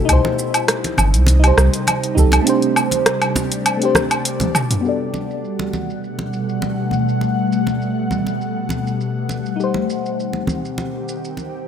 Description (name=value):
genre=sunset chillout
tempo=101 BPM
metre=4/4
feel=swing 53% on 16ths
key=G major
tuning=A4 = 440 Hz
part: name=mellow FM electric piano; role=accompaniment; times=0.0-11.7 s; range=A3 to D5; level=-22 LUFS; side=moving between left 8 dB and right 7 dB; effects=chorus, phaser, auto-pan, low-pass filter, digital delay
part: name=ethereal airy pad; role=sustained chords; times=0.0-11.7 s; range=B2 to F#5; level=-22 LUFS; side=left 1 dB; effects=ensemble chorus, built-in reverb, phaser, vintage 12-bit sampler grit
part: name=warm sub bass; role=bass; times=0.1-2.4 s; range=G1 to C2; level=-13 LUFS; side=equal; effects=none
part: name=deep house drum kit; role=drums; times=0.1-11.5 s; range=hi-hat, rim click, shaker, toms, woodblock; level=-19 LUFS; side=equal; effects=overdrive, low-pass filter on hats, low-pass filter on perc, low-pass filter on snare, low-pass filter on toms, low-pass filter on room
part: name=electronic kick drum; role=drums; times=0.1-2.3 s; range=none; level=-20 LUFS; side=equal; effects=none
part: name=congas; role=percussion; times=0.2-11.5 s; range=none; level=-26 LUFS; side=right 2 dB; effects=none
room=light reverb, digital ambience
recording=none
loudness=-16 LUFS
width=side -8 dB against mid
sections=0.0-4.8 A section; 4.8-11.7 B section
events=filter sweep on FM electric piano 0.0-4.8, 4.8-11.7; break 2.5-4.8; drum fill 4.4-4.8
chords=0.1 Cm; 2.5 D7sus4; 4.8 Gmaj9; 9.6 Cm